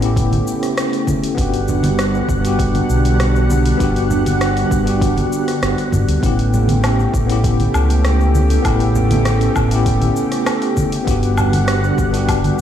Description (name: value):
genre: sunset chillout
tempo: 99 BPM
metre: 4/4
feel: straight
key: unclear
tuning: A4 = 440 Hz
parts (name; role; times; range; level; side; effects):
- bell-like tine electric piano; accompaniment; 0.0-12.6 s; B3 to G4; -20 LUFS; moving between left 4 dB and right 3 dB; medium stereo tremolo, auto-pan, low-pass filter, tape echo
- lush unison pad; sustained chords; 0.0-12.6 s; C#3 to F#5; -21 LUFS; equal; chorus
- fingered electric bass; bass; 0.0-12.5 s; G1 to G2; -17 LUFS; equal; none
- deep house drum kit; drums; 0.0-12.6 s; hi-hat, rim click, shaker, woodblock; -25 LUFS; left 1 dB; none
- electronic kick drum; drums; 0.2-12.4 s; none; -21 LUFS; equal; none
- congas; percussion; 0.3-12.6 s; none; -24 LUFS; right 1 dB; none
room: moderate lush hall reverb, RT60 1.7 s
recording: played on a big sound system in a bare room, stone room reverb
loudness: -14 LUFS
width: side -10 dB against mid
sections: 0.0-12.6 A section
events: none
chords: 0.0 A7; 1.4 Gmaj7; 6.2 A7; 11.1 Gmaj7